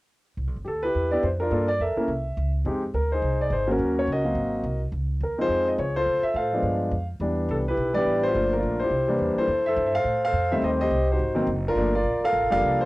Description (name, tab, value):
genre	jazz piano trio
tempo	211 BPM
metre	4/4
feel	swing 59% on 8ths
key	F major from 9.5 s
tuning	A4 = 440 Hz
part	upright bass	bass	0.4-12.9 s	F1 to A2	-28 LUFS	equal	none
part	warm concert grand piano	melody	0.6-12.9 s	Eb3 to F5	-23 LUFS	equal	cassette tape
room	light reverb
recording	home recording on cassette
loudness	-22 LUFS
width	side -19 dB against mid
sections	0.4-9.5 A section; 9.5-12.9 B section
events	none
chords	0.4 Cmaj7; 1.5 Gm9; 2.1 C(b9); 2.7 Fm7; 3.8 Ebm7; 4.4 Ab13; 4.9 Dbmaj7; 6.1 Dm7; 6.6 G7b9; 7.2 Cmaj7; 8.3 Gm7; 8.9 C7; 9.5 Fmaj7; 10.6 Am7b5; 11.2 Ab9; 11.8 Gm9